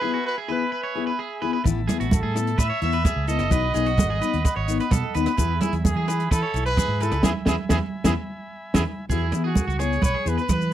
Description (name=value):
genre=highlife guitar band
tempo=129 BPM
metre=4/4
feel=straight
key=E major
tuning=A4 = 442 Hz
part: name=warm trumpet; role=melody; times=0.0-10.7 s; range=E4 to E5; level=-27 LUFS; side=right 1 dB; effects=none
part: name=fingerpicked steel-string acoustic guitar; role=accompaniment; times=0.0-10.4 s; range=E3 to G#4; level=-28 LUFS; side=left 11 dB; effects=none
part: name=combo organ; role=sustained chords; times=0.0-9.1 s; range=D#5 to B5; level=-39 LUFS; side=left 1 dB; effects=none
part: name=electric guitar at the edge of break-up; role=arpeggios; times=0.0-10.7 s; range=E4 to E5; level=-30 LUFS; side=right 5 dB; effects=slapback echo
part: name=fingered electric bass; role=bass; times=1.7-10.7 s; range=F#1 to E3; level=-26 LUFS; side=right 1 dB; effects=none
part: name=compact cocktail drum kit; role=drums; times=1.7-10.6 s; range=hi-hat, kick drum, rim click, snare drum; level=-24 LUFS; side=right 1 dB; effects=none
part: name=congas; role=percussion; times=1.7-10.6 s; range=none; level=-27 LUFS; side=right 3 dB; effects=none
part: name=maracas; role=percussion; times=1.7-10.7 s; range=none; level=-35 LUFS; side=left 13 dB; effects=none
room=little or no reverb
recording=dry, close 1970s-style studio recording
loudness=-20 LUFS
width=side -11 dB against mid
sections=0.0-9.1 A section; 9.1-10.7 B section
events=band accent 7.2-9.1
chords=0.0 E; 1.7 Asus2; 3.5 B; 5.4 E; 9.1 Eadd9